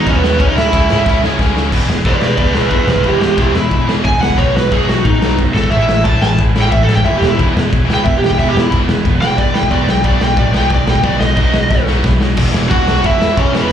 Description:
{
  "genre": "punk rock",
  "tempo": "180 BPM",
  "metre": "4/4",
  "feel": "straight",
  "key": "E major",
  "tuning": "A4 = 440 Hz",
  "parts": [
    { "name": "lead guitar through a small cranked amp", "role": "melody", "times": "0.0-13.7 s", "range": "B3 to A5", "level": "-16 LUFS", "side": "right 1 dB", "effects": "overdrive, slapback echo" },
    { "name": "high-gain distorted guitar", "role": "riff", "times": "0.0-12.4 s", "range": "A2 to G#4", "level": "-24 LUFS", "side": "right 1 dB", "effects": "distortion, slapback echo" },
    { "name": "sludgy distorted guitar", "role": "riff", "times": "0.0-13.7 s", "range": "E2 to C#4", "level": "-23 LUFS", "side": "right 12 dB", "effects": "overdrive, slapback echo" },
    { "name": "tight distorted guitar", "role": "riff", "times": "0.0-13.7 s", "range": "E2 to C#4", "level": "-22 LUFS", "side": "left 14 dB", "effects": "distortion, slapback echo" },
    { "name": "overdriven picked electric bass", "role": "bass", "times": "0.1-13.6 s", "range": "E1 to C#3", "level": "-17 LUFS", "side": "equal", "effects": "none" },
    { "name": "raw garage drum kit", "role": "drums", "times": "0.1-13.6 s", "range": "crash cymbal, kick drum, ride cymbal, snare drum", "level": "-16 LUFS", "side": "equal", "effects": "none" }
  ],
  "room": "little or no reverb",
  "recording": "live gig heard through the venue's PA, club reverb",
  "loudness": "-11 LUFS",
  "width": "side -9 dB against mid",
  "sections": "0.0-1.7 A section; 1.7-12.4 B section; 12.4-13.7 A section",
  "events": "drum fill 1.1-1.7, 11.7-12.4; lead electric guitar solo 1.7-12.4",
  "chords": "0.4 C#m; 1.7 E; 4.4 B; 5.7 A; 7.1 E; 9.7 B; 12.4 E5",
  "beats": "0.07 | 0.40 0.73 1.06 1.39 | 1.72 2.06 2.39 2.72 | 3.06 3.39 3.72 4.05 | 4.39 4.72 5.06 5.39 | 5.72 6.06 6.39 6.72 | 7.05 7.39 7.72 8.05 | 8.39 8.72 9.05 9.39 | 9.72 10.05 10.38 10.72 | 11.05 11.38 11.71 12.05 | 12.38 12.71 13.04 13.38 | 13.71"
}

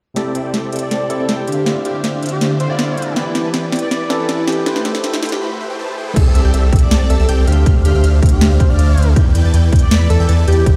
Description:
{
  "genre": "future bass",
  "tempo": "160 BPM",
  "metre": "4/4",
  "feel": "half-time",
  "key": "unclear",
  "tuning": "A4 = 440 Hz",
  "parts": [
    { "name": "barky tine electric piano", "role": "accompaniment", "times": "0.1-6.2 s", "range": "C3 to D5", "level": "-26 LUFS", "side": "equal", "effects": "sidechain pumping, digital delay" },
    { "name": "supersaw chords", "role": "riff", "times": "0.2-10.8 s", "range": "D3 to B5", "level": "-23 LUFS", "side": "equal", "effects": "sidechain pumping, low-pass filter, digital delay" },
    { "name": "trap drum kit", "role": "drums", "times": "0.2-10.7 s", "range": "crash cymbal, hi-hat, snare drum", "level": "-23 LUFS", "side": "equal", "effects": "none" },
    { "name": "riser", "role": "sound effects", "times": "3.0-6.2 s", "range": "none", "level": "-35 LUFS", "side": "equal", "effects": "none" },
    { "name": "airy dreamy lead", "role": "melody", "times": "0.8-10.6 s", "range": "G4 to D5", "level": "-25 LUFS", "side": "equal", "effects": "chorus, sidechain pumping, digital delay" },
    { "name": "unison pluck", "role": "arpeggios", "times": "6.2-10.8 s", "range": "E6 to B6", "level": "-33 LUFS", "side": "equal", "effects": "phaser, sidechain pumping" },
    { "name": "saturated sub bass", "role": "bass", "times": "6.2-10.8 s", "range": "A1 to E2", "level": "-14 LUFS", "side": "equal", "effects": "sidechain pumping" },
    { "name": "electronic kick drum", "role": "drums", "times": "6.2-10.7 s", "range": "none", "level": "-14 LUFS", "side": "equal", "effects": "none" }
  ],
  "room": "light reverb",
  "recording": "played on a big sound system in a bare room, stone room reverb, high-pass filter",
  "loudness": "-15 LUFS",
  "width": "mono",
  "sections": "0.2-6.2 A section; 6.2-10.8 B section",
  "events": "build-up 0.2-6.2; drum fill 0.2-5.4; filter sweep on supersaw synth 0.2-6.2; filter sweep on digital synth lead 0.2-6.2; filter sweep 0.2-6.2; break 5.4-6.2; drop 6.2-10.8",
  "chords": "0.2 C69; 1.5 Dm9; 3.2 Em7; 4.7 Am9; 6.2 C69; 7.5 Dm9; 9.2 Em7",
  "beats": "| 0.16 0.54 0.91 1.29 | 1.66 2.04 2.41 2.79 | 3.16 3.54 3.91 4.29 | 4.66 5.04 5.41 5.79 | 6.16 6.54 6.91 7.29 | 7.66 8.04 8.41 8.79 | 9.16 9.54 9.91 10.29 | 10.66"
}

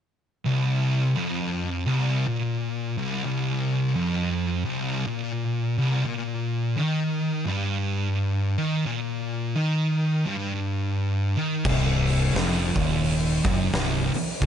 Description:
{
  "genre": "stoner and doom metal",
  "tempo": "86 BPM",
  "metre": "4/4",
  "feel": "swing 60% on 8ths",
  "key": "C minor",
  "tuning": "A4 = 440 Hz",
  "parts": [
    { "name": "thick fuzz guitar", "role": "riff", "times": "0.5-14.5 s", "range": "C2 to Eb3", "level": "-26 LUFS", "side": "left 6 dB", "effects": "distortion" },
    { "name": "thick fuzz guitar", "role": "riff", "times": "0.5-14.5 s", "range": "C2 to Eb3", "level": "-26 LUFS", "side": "right 6 dB", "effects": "distortion" },
    { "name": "fingered electric bass", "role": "bass", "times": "11.7-14.5 s", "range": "C1 to F#1", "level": "-28 LUFS", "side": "equal", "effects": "overdrive" },
    { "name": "oversized low-tuned drum kit", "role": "drums", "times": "11.7-14.5 s", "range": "crash cymbal, hi-hat, kick drum, snare drum", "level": "-26 LUFS", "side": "equal", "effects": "none" }
  ],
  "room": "light reverb",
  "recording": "nothing above 10.9 kHz",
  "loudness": "-23 LUFS",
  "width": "side -9 dB against mid",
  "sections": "0.5-11.6 A section; 11.6-14.5 B section",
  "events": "none",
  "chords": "0.5 C7sus4; 6.1 Eb/G; 11.6 Cm",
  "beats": "| 0.46 1.16 1.86 2.56 | 3.26 3.96 4.66 5.36 | 6.06 6.76 7.46 8.16 | 8.86 9.55 10.25 10.95 | 11.64 12.34 13.03 13.72 | 14.41"
}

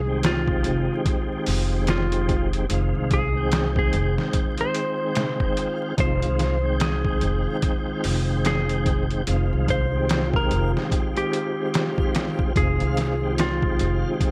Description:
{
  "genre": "trip hop",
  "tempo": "73 BPM",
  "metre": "4/4",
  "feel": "swing 59% on 16ths",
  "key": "F minor",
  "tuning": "A4 = 440 Hz",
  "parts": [
    { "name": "clean lap steel guitar", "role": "melody", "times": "0.0-14.1 s", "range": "F4 to C5", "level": "-30 LUFS", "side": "equal", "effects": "tape echo" },
    { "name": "tonewheel organ", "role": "accompaniment", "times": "0.0-14.3 s", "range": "Eb3 to G5", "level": "-30 LUFS", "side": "equal", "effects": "chorus vibrato, fast rotary speaker, tremolo, tape echo" },
    { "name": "upright bass", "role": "bass", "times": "0.0-14.0 s", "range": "F1 to C2", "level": "-27 LUFS", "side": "equal", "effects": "none" },
    { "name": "backwards swelling texture", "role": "texture", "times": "1.1-14.3 s", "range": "F4", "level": "-40 LUFS", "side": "equal", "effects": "none" },
    { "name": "trip hop sampler-style drum kit", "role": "drums", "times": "0.2-14.3 s", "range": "hi-hat, kick drum, snare drum", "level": "-27 LUFS", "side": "equal", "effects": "overdrive, small room reverb" }
  ],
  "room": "little or no reverb",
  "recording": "vinyl crackle",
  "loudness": "-23 LUFS",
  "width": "mono",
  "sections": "0.0-14.3 A section",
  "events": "none",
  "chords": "0.0 Fm7",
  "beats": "0.23 1.06 1.88 | 2.70 3.52 4.34 5.17 | 5.99 6.81 7.63 8.45 | 9.28 10.10 10.92 11.74 | 12.56 13.38 14.21"
}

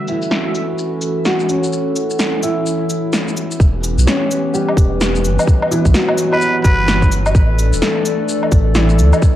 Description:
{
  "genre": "future garage",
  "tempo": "128 BPM",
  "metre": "4/4",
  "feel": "swing 61% on 16ths",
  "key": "E dorian",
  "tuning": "A4 = 440 Hz",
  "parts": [
    { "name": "warbly tape-like pad", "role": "sustained chords", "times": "0.0-9.4 s", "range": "E3 to D5", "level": "-21 LUFS", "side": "left 1 dB", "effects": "chorus, built-in reverb, sidechain pumping, cassette tape" },
    { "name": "backwards swelling texture", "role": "texture", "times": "0.0-3.6 s", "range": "F#4 to F#5", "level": "-35 LUFS", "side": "right 3 dB", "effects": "none" },
    { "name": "warm upright piano", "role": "accompaniment", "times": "0.1-9.4 s", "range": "E3 to F#4", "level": "-20 LUFS", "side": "equal", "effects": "sidechain pumping, cassette tape, analog delay" },
    { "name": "electronic cabasa, shaker, snare drum and woodblock", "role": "drums", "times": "0.1-9.3 s", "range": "none", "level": "-20 LUFS", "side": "equal", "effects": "cassette tape" },
    { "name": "warm sub bass", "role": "bass", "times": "3.6-9.1 s", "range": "E1 to D2", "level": "-15 LUFS", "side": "equal", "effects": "sidechain pumping" },
    { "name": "electronic kick drum", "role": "drums", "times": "3.6-9.3 s", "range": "none", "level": "-13 LUFS", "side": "equal", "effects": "cassette tape" },
    { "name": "trumpet with straight mute", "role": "melody", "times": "6.3-7.1 s", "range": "B4", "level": "-21 LUFS", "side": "right 1 dB", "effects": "cassette tape, analog delay" }
  ],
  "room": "moderate spring reverb, RT60 2.1 s",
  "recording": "home recording on cassette, low-pass filter",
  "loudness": "-13 LUFS",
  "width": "side -12 dB against mid",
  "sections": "0.0-3.6 A section; 3.6-9.4 B section",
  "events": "none",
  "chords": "0.0 F#m7; 3.6 Em; 7.3 Asus4",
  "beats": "0.32 0.79 1.26 | 1.73 2.19 2.66 3.13 | 3.60 4.07 4.54 5.01 | 5.47 5.94 6.41 6.88 | 7.35 7.82 8.29 8.76 | 9.22"
}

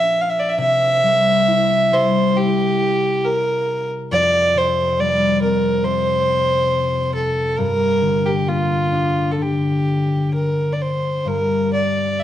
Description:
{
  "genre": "celtic folk, Celtic slow air",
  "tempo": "62-70 BPM",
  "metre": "4/4",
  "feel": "rubato",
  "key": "G dorian",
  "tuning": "A4 = 440 Hz",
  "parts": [
    { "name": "dark fiddle", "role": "melody", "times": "0.0-12.2 s", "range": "F4 to F5", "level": "-17 LUFS", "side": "right 1 dB", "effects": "slapback echo" },
    { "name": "concert harp", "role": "accompaniment", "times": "0.0-12.2 s", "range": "F2 to E4", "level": "-20 LUFS", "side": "left 2 dB", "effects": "none" }
  ],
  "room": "studio reverb",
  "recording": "dry, close 1970s-style studio recording",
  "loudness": "-16 LUFS",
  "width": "side -11 dB against mid",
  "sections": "0.0-11.3 A section",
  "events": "none",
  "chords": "0.0 Bb; 0.6 C; 4.1 Fsus2; 7.6 Gm",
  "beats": "| 0.57 1.47 2.36 3.24 | 4.11 4.97 5.83 6.69 | 7.57 8.46 9.38 10.32 | 11.26 12.19"
}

